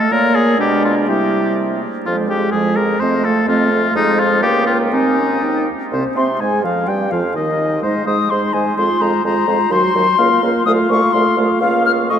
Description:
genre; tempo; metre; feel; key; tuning
quick classical-period movement for wind quintet; 126 BPM; 2/4; rubato; F minor, Ab major from 3.9 s; A4 = 440 Hz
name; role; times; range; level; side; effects
concert flute; melody; 0.0-12.2 s; Ab4 to F6; -19 LUFS; left 5 dB; none
warm oboe; second line; 0.0-12.2 s; Eb4 to C6; -19 LUFS; left 2 dB; none
dark French horn; accompaniment; 0.0-12.2 s; C3 to Eb4; -21 LUFS; equal; none
mellow clarinet; accompaniment; 0.0-12.2 s; Ab3 to C5; -21 LUFS; right 4 dB; none
mellow bassoon; bass; 0.1-12.2 s; C2 to C3; -21 LUFS; right 4 dB; none
room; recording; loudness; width
wet cathedral reverb, RT60 7.4 s; in a vast, echoing space; -13 LUFS; side -8 dB against mid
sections
0.0-5.9 A section; 5.9-12.2 B section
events
none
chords
0.1 Bbm; 0.6 Bdim7; 1.1 C; 2.1 Fm; 3.0 F7; 3.9 Fm; 4.4 Bbm/Db; 4.9 Ab/Eb; 5.4 Eb; 5.9 Ab/C; 6.9 Eb; 7.8 Ab; 8.8 Fm; 9.7 Cdim/Eb; 10.2 Bbm/Db; 10.7 F/C; 11.6 Bbm/Db

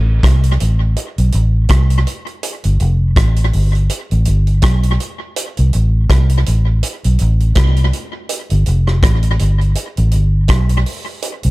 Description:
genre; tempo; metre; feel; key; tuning
roots reggae; 82 BPM; 4/4; swing 56% on 16ths; unclear; A4 = 441 Hz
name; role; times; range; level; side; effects
vintage muted fingered electric bass; bass; 0.0-11.5 s; F1 to C2; -12 LUFS; equal; none
vintage drum kit; drums; 0.2-11.5 s; hi-hat, kick drum, rim click; -18 LUFS; equal; tape echo
room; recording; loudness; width
little or no reverb; echo-heavy mix; -12 LUFS; side -20 dB against mid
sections
0.0-11.5 A section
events
none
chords
none

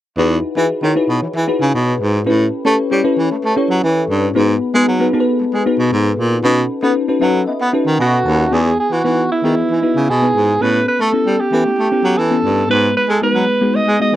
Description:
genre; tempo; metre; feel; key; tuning
polished 1980s jazz-funk pop; 115 BPM; 4/4; straight; E major; A4 = 440 Hz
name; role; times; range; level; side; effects
bell-like FM electric piano; accompaniment; 0.2-14.2 s; G#3 to A5; -17 LUFS; left 2 dB; analog chorus
breathy baritone saxophone; bass; 0.2-14.2 s; D#2 to B3; -16 LUFS; right 1 dB; none
breathy alto saxophone; melody; 8.0-14.2 s; E4 to D#5; -16 LUFS; right 2 dB; slapback echo
room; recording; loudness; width
little or no reverb; dry, close 1970s-style studio recording; -13 LUFS; side -13 dB against mid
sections
0.2-8.5 A section; 8.5-14.2 B section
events
FM electric piano fill 7.0-8.5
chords
0.2 Emaj7; 2.3 A9; 4.4 G#m7; 6.4 B7; 8.5 Emaj7; 10.6 A9; 12.7 G#m7

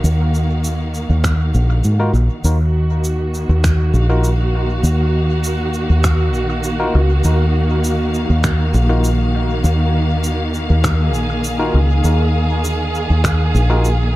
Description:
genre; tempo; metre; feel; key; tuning
ambient dub; 100 BPM; 4/4; straight; Eb minor; A4 = 444 Hz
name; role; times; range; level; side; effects
warm studio string section; sustained chords; 0.0-14.2 s; Eb3 to F5; -21 LUFS; equal; none
fingered electric bass; bass; 0.0-14.2 s; Bb1 to Ab2; -15 LUFS; equal; none
electronic shaker and finger snaps; drums; 0.0-14.0 s; none; -26 LUFS; equal; overdrive, dub echo
electronic kick drum; drums; 1.2-13.4 s; none; -20 LUFS; equal; overdrive
barky tine electric piano; stabs; 2.0-13.9 s; Eb4 to Bb4; -26 LUFS; left 1 dB; dub echo
room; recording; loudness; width
digital ambience; echo-heavy mix; -14 LUFS; side -17 dB against mid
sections
0.0-2.4 A section; 2.4-14.2 B section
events
none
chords
0.0 Ebmadd9

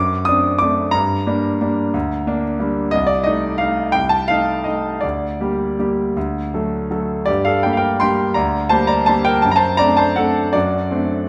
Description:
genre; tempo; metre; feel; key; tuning
classical, piano waltz; 156-190 BPM; 3/4; rubato; G minor; A4 = 439 Hz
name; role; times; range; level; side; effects
warm concert grand piano; solo; 0.0-11.3 s; C2 to Eb6; -18 LUFS; equal; none
room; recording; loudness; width
moderate scoring stage reverb, RT60 1.6 s; none; -18 LUFS; mono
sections
0.0-7.3 A section; 7.3-11.3 B section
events
none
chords
0.0 D7/F#; 0.9 Gm; 2.9 Adim/C; 5.0 Gm/D; 6.2 D; 7.3 Gm; 9.4 D7/F#

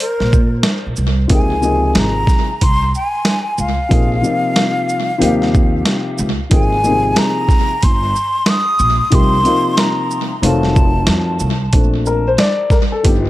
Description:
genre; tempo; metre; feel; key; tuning
hip hop, jazz-hop; 92 BPM; 4/4; swing 64% on 16ths; unclear; A4 = 440 Hz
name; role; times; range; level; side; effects
breathy concert flute; melody; 0.0-11.4 s; Bb4 to Eb6; -18 LUFS; equal; tape echo
boom bap sampler-style drum kit; drums; 0.0-13.2 s; hi-hat, kick drum, shaker, snare drum; -16 LUFS; equal; tape echo
upright bass; bass; 0.2-13.3 s; F1 to Bb2; -18 LUFS; right 1 dB; none
dark upright piano; accompaniment; 1.3-13.3 s; Bb2 to D5; -18 LUFS; left 3 dB; none
room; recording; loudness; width
moderate spring reverb, RT60 1.9 s, small room ambience; echo-heavy mix; -12 LUFS; side -16 dB against mid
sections
0.0-1.3 A section; 1.3-11.7 B section; 11.7-13.3 C section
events
upright piano solo 11.7-13.3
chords
0.0 Bbsus2; 1.3 Dbmaj7; 3.9 Bb5; 5.2 Eb7; 6.5 Abadd9; 9.1 Cm7; 10.4 F7b9; 11.7 Bbmaj9

